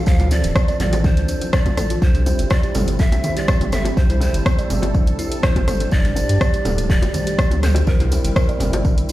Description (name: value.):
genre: afro house.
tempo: 123 BPM.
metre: 4/4.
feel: straight.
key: unclear.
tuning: A4 = 441 Hz.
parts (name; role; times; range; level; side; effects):
breathy large pan pipes; melody; 0.0-9.1 s; Bb4 to F5; -27 LUFS; right 1 dB; ping-pong delay.
warm analog pad; sustained chords; 0.0-9.1 s; E3 to A4; -28 LUFS; equal; chorus, sidechain pumping.
round analog bass; bass; 0.0-9.1 s; D1 to G2; -20 LUFS; equal; sidechain pumping.
kalimba; arpeggios; 0.1-9.1 s; A3 to D5; -28 LUFS; equal; sidechain pumping, ping-pong delay.
electronic kick drum; drums; 0.1-8.9 s; none; -17 LUFS; equal; none.
tambourine; percussion; 0.1-9.1 s; none; -37 LUFS; right 3 dB; none.
deep house drum kit; drums; 0.2-9.1 s; hi-hat, rim click, toms; -26 LUFS; equal; overdrive.
congas; percussion; 0.2-9.0 s; none; -28 LUFS; right 1 dB; none.
bongos; percussion; 0.3-9.0 s; none; -29 LUFS; left 3 dB; none.
room: small room ambience.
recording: played on a big sound system in a bare room, large studio reverb.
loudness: -16 LUFS.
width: side -16 dB against mid.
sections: 0.0-9.1 A section.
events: none.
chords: 0.0 Dm7; 2.0 C; 5.9 G5; 7.9 C7.